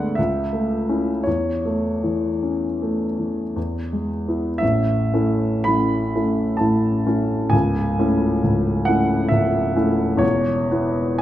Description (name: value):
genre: classical, romantic nocturne for solo piano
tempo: 51-68 BPM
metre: 3/4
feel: rubato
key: A major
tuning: A4 = 441 Hz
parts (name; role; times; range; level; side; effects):
- warm grand piano; solo; 0.0-11.2 s; C#1 to B5; -18 LUFS; equal; none
room: wet recital hall reverb, RT60 1.5 s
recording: none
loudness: -18 LUFS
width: side -13 dB against mid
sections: 0.0-4.6 A section; 4.6-11.2 B section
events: none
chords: 0.2 A/C#; 1.3 A/E; 3.6 E; 4.6 A; 7.5 A/C#; 10.2 E5